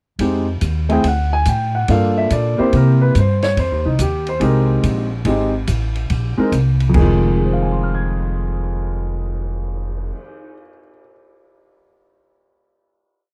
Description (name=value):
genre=jazz piano trio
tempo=142 BPM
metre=4/4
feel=swing 66% on 8ths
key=F minor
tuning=A4 = 440 Hz
part: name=warm upright piano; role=melody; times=0.2-11.1 s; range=F2 to Ab6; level=-21 LUFS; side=equal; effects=none
part: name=upright bass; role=bass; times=0.2-10.1 s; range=F1 to C3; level=-20 LUFS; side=equal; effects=none
part: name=open jazz drum kit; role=drums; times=0.2-10.2 s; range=crash cymbal, cymbal swell, hi-hat, kick drum, ride cymbal, snare drum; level=-29 LUFS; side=equal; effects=none
room=little or no reverb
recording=dry, close 1970s-style studio recording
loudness=-18 LUFS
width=mono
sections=0.2-6.9 A section; 6.9-10.3 final chord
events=none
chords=0.2 Fm7; 1.0 D5; 1.9 Gm7; 2.7 C7; 3.6 Fm7 (rootless); 6.9 Fm7